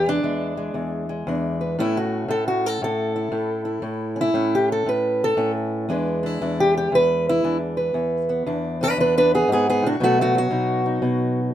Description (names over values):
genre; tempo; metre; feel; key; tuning
acoustic country blues, solo or duo; 117 BPM; 4/4; swing 65% on 8ths; E mixolydian; A4 = 441 Hz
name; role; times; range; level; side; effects
fingerpicked acoustic archtop guitar; solo; 0.0-11.5 s; E2 to B4; -19 LUFS; equal; none
room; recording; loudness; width
light reverb; minimal, uncompressed stereo recording; -19 LUFS; side -11 dB against mid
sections
0.0-11.5 A section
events
steel-string acoustic guitar solo 0.0-11.5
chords
0.0 E7; 1.8 A; 5.9 E7; 10.0 B7